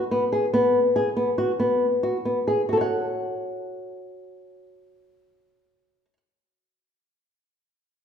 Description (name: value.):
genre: contemporary instrumental, contemporary.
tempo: 139 BPM.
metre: 5/4.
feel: straight.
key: unclear.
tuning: A4 = 440 Hz.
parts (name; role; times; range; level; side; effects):
flamenco guitar; arpeggios; 0.0-6.2 s; B3 to F#5; -21 LUFS; left 1 dB; none.
room: wet recital hall reverb, RT60 1.7 s.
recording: minimal, uncompressed stereo recording.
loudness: -21 LUFS.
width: side -8 dB against mid.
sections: 0.0-2.7 A section; 2.7-7.0 B section.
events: slowing down 0.0-2.7.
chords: 0.0 N.C.; 0.5 G#m7; 2.7 F#5.